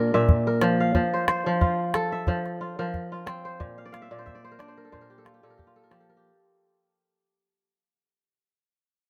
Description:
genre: west african traditional, West African string and xylophone music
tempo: 91 BPM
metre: 4/4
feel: swing 55% on 16ths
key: unclear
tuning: A4 = 439 Hz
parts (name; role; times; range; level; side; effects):
- kora; arpeggios; 0.0-7.6 s; Bb2 to F5; -27 LUFS; equal; none
- calabash; percussion; 0.3-6.1 s; none; -25 LUFS; equal; none
room: moderate spring reverb, RT60 2.9 s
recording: none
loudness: -25 LUFS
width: mono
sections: 0.0-6.2 A section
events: fade-out 0.0-6.2; kora fill 3.8-6.2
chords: 0.0 Bb; 0.9 F; 3.6 Bb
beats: 0.28 | 0.95 1.61 2.27 2.93 | 3.59 4.25 4.91 5.57

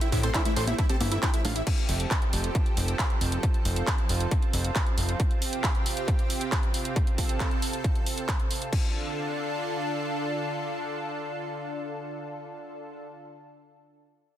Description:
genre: uplifting trance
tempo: 136 BPM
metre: 4/4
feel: straight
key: D minor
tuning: A4 = 440 Hz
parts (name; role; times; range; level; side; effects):
- dense compressed supersaw; melody; 0.0-1.6 s; A3 to C5; -34 LUFS; right 1 dB; sidechain pumping, tape echo
- plucky unison lead; second line; 0.0-1.6 s; E5 to C6; -38 LUFS; right 2 dB; sidechain pumping, tape echo
- lush unison pad; sustained chords; 0.0-13.0 s; C3 to A4; -32 LUFS; right 1 dB; chorus, sidechain pumping
- wide unison pluck; arpeggios; 0.0-1.6 s; D3 to D5; -37 LUFS; left 2 dB; phaser, sidechain pumping, tape echo
- techno drum kit; drums; 0.0-8.8 s; congas, crash cymbal, handclaps, hi-hat; -32 LUFS; equal; overdrive
- fat analog bass; bass; 0.1-5.2 s; F1 to A1; -28 LUFS; equal; sidechain pumping
- electronic kick drum; drums; 0.1-8.8 s; none; -26 LUFS; equal; distortion, overdrive
room: light reverb, digital ambience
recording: dense, heavily limited modern master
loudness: -25 LUFS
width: side -12 dB against mid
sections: 0.0-1.7 A section; 1.7-8.7 B section; 8.7-12.3 C section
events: drop 0.0-1.7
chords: 0.0 Am7; 1.7 Fadd9; 5.2 Csus4; 8.7 Dm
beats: 0.34 0.79 1.23 | 1.67 2.11 2.55 2.99 | 3.43 3.87 4.31 4.76 | 5.20 5.64 6.08 6.52 | 6.96 7.40 7.84 8.29 | 8.73 9.17 9.61 10.05 | 10.49 10.93 11.37 11.81

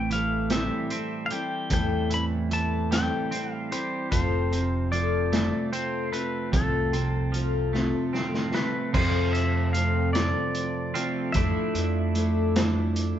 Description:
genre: folk rock and heartland rock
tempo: 50 BPM (dotted quarters)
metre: 6/8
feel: straight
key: unclear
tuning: A4 = 440 Hz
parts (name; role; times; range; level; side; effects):
- pedal steel guitar; melody; 0.0-12.9 s; A4 to B5; -31 LUFS; left 1 dB; none
- picked steel-string acoustic guitar; accompaniment; 0.0-13.2 s; A2 to A4; -31 LUFS; left 6 dB; none
- twelve-string electric guitar; riff; 0.0-13.2 s; F2 to F4; -29 LUFS; right 5 dB; none
- picked electric bass; bass; 0.0-13.1 s; F1 to F2; -28 LUFS; equal; none
- vintage drum kit; drums; 0.1-13.1 s; crash cymbal, hi-hat, kick drum, snare drum; -29 LUFS; equal; none
- mellow tonewheel organ; sustained chords; 8.9-13.2 s; E4 to D5; -40 LUFS; left 1 dB; slow rotary speaker
room: light reverb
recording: band playing live in one room, nothing above 7.9 kHz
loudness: -23 LUFS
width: side -10 dB against mid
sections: 0.0-8.9 A section; 8.9-13.2 B section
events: drum fill 7.7-8.9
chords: 0.0 Am7; 4.1 F; 11.4 Dmadd9/F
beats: 0.51 | 1.71 2.92 | 4.12 5.33 | 6.53 7.74 | 8.94 10.15 | 11.35 12.56

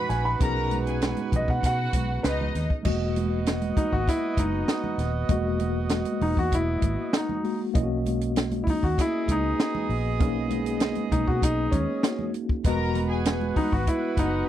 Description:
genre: lush 1970s-style soul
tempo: 98 BPM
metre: 4/4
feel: straight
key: unclear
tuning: A4 = 440 Hz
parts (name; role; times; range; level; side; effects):
- muted studio string section; second line; 0.0-2.7, 12.7-14.4 s; D#4 to B5; -33 LUFS; left 1 dB; none
- mellow tine electric piano; accompaniment; 0.0-14.5 s; A#2 to D#5; -30 LUFS; left 2 dB; medium stereo tremolo
- warm horn section; stabs; 0.0-14.5 s; B3 to D#5; -33 LUFS; right 7 dB; none
- warm grand piano; melody; 0.1-14.5 s; C#4 to B5; -28 LUFS; left 1 dB; none
- vintage muted fingered electric bass; bass; 0.1-14.4 s; D#1 to B2; -29 LUFS; equal; none
- compact cocktail drum kit; drums; 0.1-14.3 s; crash cymbal, hi-hat, kick drum, snare drum; -26 LUFS; equal; none
- congas; percussion; 0.4-14.3 s; none; -35 LUFS; right 6 dB; none
room: little or no reverb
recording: none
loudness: -23 LUFS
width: side -11 dB against mid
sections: 0.0-2.8 A section; 2.8-14.5 A section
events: none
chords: 0.0 Bmaj7; 2.8 Emaj9#11; 7.7 Bmaj7; 12.6 Emaj9#11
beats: | 0.40 1.01 1.62 2.24 | 2.85 3.46 4.07 4.69 | 5.30 5.91 6.52 7.14 | 7.75 8.36 8.97 9.59 | 10.20 10.81 11.42 12.04 | 12.65 13.26 13.87 14.49

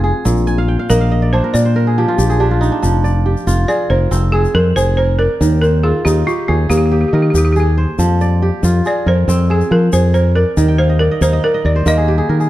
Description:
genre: west african traditional, West African string and xylophone music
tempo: 93 BPM (dotted quarters)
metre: 12/8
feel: straight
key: F dorian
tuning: A4 = 441 Hz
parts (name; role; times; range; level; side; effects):
- kora; arpeggios; 0.0-12.5 s; Bb2 to Ab5; -18 LUFS; right 2 dB; none
- fingered electric bass; bass; 0.0-12.5 s; F1 to F3; -14 LUFS; equal; none
- egg shaker; percussion; 0.3-12.5 s; none; -31 LUFS; left 7 dB; none
- balafon; melody; 0.9-12.5 s; F4 to Eb5; -18 LUFS; equal; none
room: light reverb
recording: dark, warm production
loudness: -12 LUFS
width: side -15 dB against mid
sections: 0.0-2.8 A section; 2.8-12.5 B section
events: balafon solo 0.0-2.8; kora fill 0.5-2.8, 10.7-12.5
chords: 0.3 Bb; 2.8 Fm; 5.4 Eb; 8.0 Fm; 10.6 Eb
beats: | 0.26 0.90 1.54 2.19 | 2.83 3.48 4.12 4.77 | 5.41 6.06 6.70 7.35 | 7.99 8.64 9.28 9.93 | 10.57 11.22 11.87

